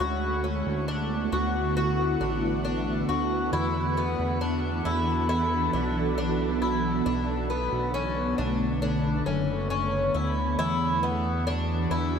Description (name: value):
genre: dream pop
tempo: 68 BPM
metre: 4/4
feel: straight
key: unclear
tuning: A4 = 440 Hz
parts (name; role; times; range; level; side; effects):
- ethereal airy pad; sustained chords; 0.0-12.2 s; D3 to A4; -28 LUFS; right 1 dB; ensemble chorus, built-in reverb, phaser
- fingerpicked twelve-string acoustic guitar; arpeggios; 0.0-12.2 s; B3 to F#4; -28 LUFS; left 2 dB; wide subtle chorus, digital delay
- fat analog bass; bass; 0.0-12.2 s; F#1 to E2; -30 LUFS; equal; none
room: moderate shimmer reverb, RT60 7.5 s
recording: none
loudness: -24 LUFS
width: side -7 dB against mid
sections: 0.0-10.6 A section; 10.6-12.2 B section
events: none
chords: 0.0 D6; 3.5 E9sus4; 7.1 Bm9; 10.6 E9